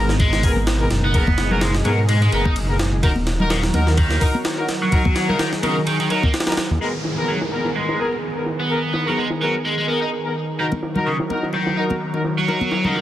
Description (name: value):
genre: breakbeat, breaks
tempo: 127 BPM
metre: 4/4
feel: swing 56% on 16ths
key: G# minor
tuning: A4 = 440 Hz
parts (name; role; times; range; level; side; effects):
- lush unison pad; sustained chords; 0.0-13.0 s; B2 to A#4; -25 LUFS; equal; chorus, phaser, vintage 12-bit sampler grit, sidechain pumping
- warm brass ensemble; stabs; 0.0-13.0 s; B3 to A#4; -25 LUFS; left 2 dB; digital delay
- detuned saw bass; bass; 0.0-6.8 s; D#1 to G#2; -20 LUFS; equal; none
- breakbeat sampler-style drum kit; drums; 0.1-13.0 s; hi-hat, kick drum, ride cymbal, snare drum; -23 LUFS; equal; low-pass filter on cymbals, low-pass filter on kick, soft clipping on snare, low-pass filter on snare, low-pass filter on hats
- biting overdriven guitar; riff; 0.2-13.0 s; C#3 to G#4; -24 LUFS; equal; phaser, low-pass filter, digital delay
- congas and bongos; percussion; 0.6-6.3, 10.7-12.9 s; none; -27 LUFS; left 2 dB; none
- downlifter and riser; sound effects; 6.8-13.0 s; none; -32 LUFS; equal; none
room: light reverb, digital ambience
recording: dense, heavily limited modern master, vinyl crackle, lossy compression artefacts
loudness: -17 LUFS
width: side -13 dB against mid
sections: 0.0-6.8 A section; 6.8-13.0 B section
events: none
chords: 0.0 G#madd9; 3.0 D#m; 6.8 G#madd9; 10.6 D#m